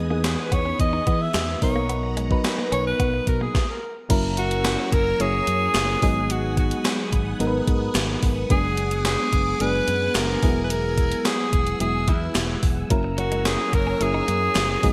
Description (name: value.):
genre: 1980s-style pop.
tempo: 109 BPM.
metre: 4/4.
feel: straight.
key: F# mixolydian.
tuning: A4 = 440 Hz.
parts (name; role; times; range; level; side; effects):
mellow FM electric piano; accompaniment; 0.0-14.9 s; E3 to C#5; -29 LUFS; equal; chorus.
phased string machine; sustained chords; 0.0-14.9 s; B3 to E6; -38 LUFS; equal; ensemble chorus, phaser.
direct-recorded clean electric guitar; riff; 0.0-3.5, 13.0-14.7 s; F#3 to D#4; -36 LUFS; equal; analog chorus, delay.
fingered electric bass; bass; 0.0-14.9 s; E1 to E3; -30 LUFS; equal; none.
gated 80s digital drum machine; drums; 0.2-14.9 s; crash cymbal, hi-hat, kick drum, snare drum, tambourine; -26 LUFS; equal; gated reverb, gated reverb snare.
group handclap; percussion; 0.2-14.7 s; none; barely audible; none; none.
bright alto saxophone; melody; 0.3-14.9 s; E4 to E5; -28 LUFS; equal; none.
room: moderate plate reverb, RT60 1.3 s, digital ambience.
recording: bright 1980s-style digital production.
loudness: -22 LUFS.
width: mono.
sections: 0.0-4.1 A section; 4.1-14.9 B section.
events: alto saxophone solo 0.0-4.1; stop 3.5-4.1.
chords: 0.0 Emaj7; 1.6 Bmaj7; 4.1 F#7; 6.0 G#m7; 8.5 Bm6/F#; 10.4 Eadd9; 12.9 F#7.